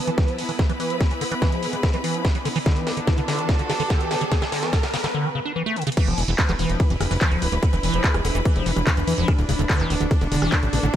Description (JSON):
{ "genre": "psychedelic trance", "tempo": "145 BPM", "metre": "4/4", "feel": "straight", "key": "unclear", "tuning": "A4 = 440 Hz", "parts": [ { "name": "formant-sweep wobble bass", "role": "second line", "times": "0.0-10.9 s", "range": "G#3 to B3", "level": "-36 LUFS", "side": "left 2 dB", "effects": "analog chorus, sidechain pumping, high-pass filter, digital delay" }, { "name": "swarming drone", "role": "sustained chords", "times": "0.0-11.0 s", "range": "B3 to D4", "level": "-33 LUFS", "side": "equal", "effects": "built-in reverb, sidechain pumping" }, { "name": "riser", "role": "sound effects", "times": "1.0-5.1 s", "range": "none", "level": "-32 LUFS", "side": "right 1 dB", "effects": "none" }, { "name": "bright studio string section", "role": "texture", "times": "0.0-11.0 s", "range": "D4 to B5", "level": "-30 LUFS", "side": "equal", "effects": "sidechain pumping" }, { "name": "liquid acid bass", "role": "riff", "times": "0.1-11.0 s", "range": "C#3 to D4", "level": "-26 LUFS", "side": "equal", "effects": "phaser, auto-pan, sidechain pumping, dub echo" }, { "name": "techno drum kit", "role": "drums", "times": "0.1-11.0 s", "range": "crash cymbal, handclaps, hi-hat, ride cymbal, rim click, snare drum", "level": "-28 LUFS", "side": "equal", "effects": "high-pass filter on hats, high-pass filter on snare, high-pass filter on cymbals, high-pass filter on room" }, { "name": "electronic kick drum", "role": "drums", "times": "0.2-11.0 s", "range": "none", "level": "-20 LUFS", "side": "equal", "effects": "none" }, { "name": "fat analog bass", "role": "bass", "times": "6.1-10.9 s", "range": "D1 to E2", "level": "-24 LUFS", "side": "equal", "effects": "none" } ], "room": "digital ambience", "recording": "none", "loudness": "-19 LUFS", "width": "side -11 dB against mid", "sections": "0.0-6.0 A section; 6.0-11.0 B section", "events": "build-up 0.0-6.0; drum fill 0.0-5.1, 5.8; filter sweep on acid bass 0.0-6.0; riser 1.0-5.1; break 5.1-6.0; drop 6.0-11.0", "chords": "0.0 E5; 2.7 D5; 6.0 E5; 9.3 D5", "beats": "0.18 0.59 | 1.01 1.42 1.83 2.25 | 2.66 3.08 3.49 3.90 | 4.32 4.73 5.14 5.56 | 5.97 6.38 6.80 7.21 | 7.63 8.04 8.45 8.87 | 9.28 9.70 10.11 10.52 | 10.94" }